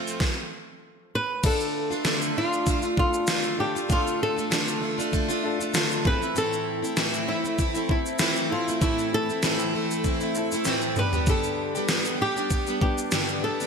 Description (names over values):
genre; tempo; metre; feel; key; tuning
acoustic pop; 98 BPM; 4/4; swing 55% on 16ths; unclear; A4 = 440 Hz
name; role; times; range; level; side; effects
flamenco guitar; melody; 0.0-13.7 s; E4 to B4; -29 LUFS; equal; none
clear upright piano; accompaniment; 0.0-13.7 s; B3 to F5; -36 LUFS; left 5 dB; none
picked plugged-in steel-string acoustic guitar; accompaniment; 0.0-13.7 s; G2 to G4; -27 LUFS; equal; double-tracked left and right
pop drum kit; drums; 0.1-13.7 s; crash cymbal, kick drum, shaker, snare drum, toms; -27 LUFS; equal; overdrive, gated reverb
room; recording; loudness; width
moderate lush hall reverb, RT60 2.4 s; bright 1980s-style digital production; -23 LUFS; side -5 dB against mid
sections
0.0-1.4 A section; 1.4-13.7 A section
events
drum fill 10.7-11.3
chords
0.0 F; 1.4 Dm; 6.0 Am; 11.0 G